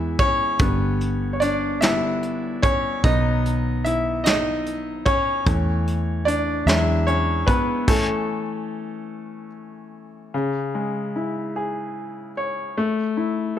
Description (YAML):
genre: six-eight pop ballad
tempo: 49 BPM (dotted quarters)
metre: 6/8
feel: straight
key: A major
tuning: A4 = 436 Hz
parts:
  - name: clear baby grand piano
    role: accompaniment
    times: 0.0-13.6 s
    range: C#3 to E5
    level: -22 LUFS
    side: left 1 dB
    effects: none
  - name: vintage muted fingered electric bass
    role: bass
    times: 0.0-7.4 s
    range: G1 to E2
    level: -24 LUFS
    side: right 1 dB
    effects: none
  - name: soft brush drum kit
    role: drums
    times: 0.2-8.1 s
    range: crash cymbal, hi-hat, kick drum, snare drum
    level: -22 LUFS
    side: right 1 dB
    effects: none
room: light reverb, studio reverb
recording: none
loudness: -20 LUFS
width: side -10 dB against mid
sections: 0.0-10.3 A section; 10.3-13.6 A section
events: grand piano solo 0.0-10.3; stop 7.9-10.3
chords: 0.0 E; 0.6 G; 3.0 B; 5.5 A/E; 6.7 E7; 7.9 A; 10.3 C#m; 12.8 A5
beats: | 0.60 1.82 | 3.04 4.25 | 5.47 6.67 | 7.88 9.10 | 10.33 11.55 | 12.76